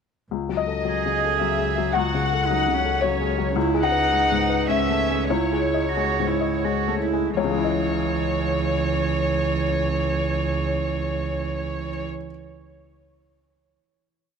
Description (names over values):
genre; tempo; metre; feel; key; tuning
neoclassical piano and strings; 80-112 BPM; 3/4; rubato; C# minor; A4 = 440 Hz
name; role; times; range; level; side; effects
felt-muted upright piano; accompaniment; 0.3-12.3 s; C#2 to F#5; -25 LUFS; left 9 dB; none
dark double bass; bass; 0.3-12.0 s; C#2; -28 LUFS; right 2 dB; none
warm chamber violin section; melody; 0.6-12.0 s; C#5 to F#5; -26 LUFS; left 3 dB; none
warm cello; second line; 0.8-12.0 s; E3 to G#4; -26 LUFS; right 13 dB; none
room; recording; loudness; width
light reverb, studio reverb; 1960s-style stereo with parts hard left and right; -20 LUFS; side -6 dB against mid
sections
0.3-7.4 theme; 7.4-11.9 final chord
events
slowing down 2.7-7.4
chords
0.3 F#m/C#; 3.6 C#m7; 5.3 C#madd9